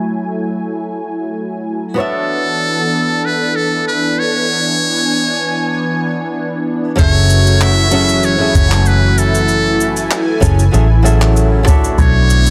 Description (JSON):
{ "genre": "sunset chillout", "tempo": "96 BPM", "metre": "4/4", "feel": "straight", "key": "F# minor", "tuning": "A4 = 439 Hz", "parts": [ { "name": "flamenco guitar", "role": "accompaniment", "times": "0.0-12.5 s", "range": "F#3 to G#5", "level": "-22 LUFS", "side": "equal", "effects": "tape echo" }, { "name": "lush unison pad", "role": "sustained chords", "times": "0.0-12.5 s", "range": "D3 to G#5", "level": "-21 LUFS", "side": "equal", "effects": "chorus, phaser" }, { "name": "trumpet with metal mute", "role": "melody", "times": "2.0-12.5 s", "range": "A4 to E5", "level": "-19 LUFS", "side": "equal", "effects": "tape echo" }, { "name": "vintage muted fingered electric bass", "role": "bass", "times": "7.0-12.5 s", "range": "F#1 to B1", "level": "-15 LUFS", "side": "equal", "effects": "none" }, { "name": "cabasa and handclaps", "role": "drums", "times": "7.0-12.5 s", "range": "none", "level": "-24 LUFS", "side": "equal", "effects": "low-pass filter on perc, soft clipping on snare, low-pass filter on snare, low-pass filter on room" }, { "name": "electronic kick drum", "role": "drums", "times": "7.0-12.1 s", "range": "none", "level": "-15 LUFS", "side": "equal", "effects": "none" } ], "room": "light reverb, small room ambience", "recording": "dense, heavily limited modern master", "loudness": "-14 LUFS", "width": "mono", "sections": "0.0-7.0 A section; 7.0-12.5 B section", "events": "filter sweep on analog synth pad 0.0-7.0", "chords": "0.0 F#m9; 2.0 Bm11; 7.0 F#m9" }